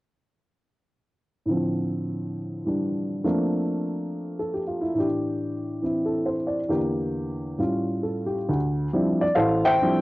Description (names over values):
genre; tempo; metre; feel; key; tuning
solo jazz; 137 BPM; 4/4; swing 66% on 8ths, rubato; D minor; A4 = 440 Hz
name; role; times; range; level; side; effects
dark upright piano; solo; 1.5-10.0 s; A1 to G5; -23 LUFS; equal; cassette tape
room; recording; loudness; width
moderate small room ambience, RT60 0.5 s; home recording on cassette; -23 LUFS; side -19 dB against mid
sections
1.5-8.5 A section; 8.5-10.0 B section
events
none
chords
1.5 Dm9/A; 3.2 Bbmaj13/F; 5.0 A7sus4; 6.7 Em7b5; 7.6 A7b13; 8.5 Dm11